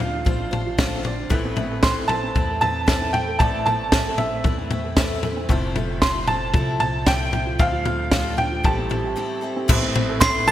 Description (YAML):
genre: indie folk with a building arrangement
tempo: 115 BPM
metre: 4/4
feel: straight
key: A minor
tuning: A4 = 439 Hz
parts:
  - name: bright upright piano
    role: melody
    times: 0.0-10.5 s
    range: E5 to C6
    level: -24 LUFS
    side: right 2 dB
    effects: none
  - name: bright upright piano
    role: accompaniment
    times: 0.0-10.5 s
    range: F1 to A5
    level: -34 LUFS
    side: equal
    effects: none
  - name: picked steel-string acoustic guitar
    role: accompaniment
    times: 0.0-10.5 s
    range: A2 to C5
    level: -31 LUFS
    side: left 4 dB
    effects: wide subtle chorus
  - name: dark upright piano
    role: arpeggios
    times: 0.0-10.5 s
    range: F3 to A4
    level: -30 LUFS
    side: right 4 dB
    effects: analog chorus, digital delay
  - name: upright bass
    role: bass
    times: 0.0-10.5 s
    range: F1 to E2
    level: -29 LUFS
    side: equal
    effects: none
  - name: compact cocktail drum kit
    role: drums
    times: 0.0-10.5 s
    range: crash cymbal, kick drum, snare drum, toms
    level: -22 LUFS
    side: left 1 dB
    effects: none
  - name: glockenspiel with brass mallets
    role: second line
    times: 10.2-10.5 s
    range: A6 to C7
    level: -21 LUFS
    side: right 3 dB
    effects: none
  - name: group handclap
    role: percussion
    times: 10.2-10.3 s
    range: none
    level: -28 LUFS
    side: left 3 dB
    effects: none
room: moderate lush hall reverb, RT60 2.0 s, small room ambience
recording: bright 1980s-style digital production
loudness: -19 LUFS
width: side -12 dB against mid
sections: 0.0-9.7 A section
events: upright piano fill 0.3-1.3; break 9.2-9.7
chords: 0.0 Dm7; 1.3 Amadd9; 5.5 Fmaj7; 7.6 Dm7; 8.6 Am7; 9.7 Amadd9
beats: 0.26 0.79 | 1.31 1.83 2.36 2.88 | 3.40 3.93 4.45 4.98 | 5.50 6.03 6.55 7.07 | 7.60 8.12 8.64 9.17 | 9.69 10.21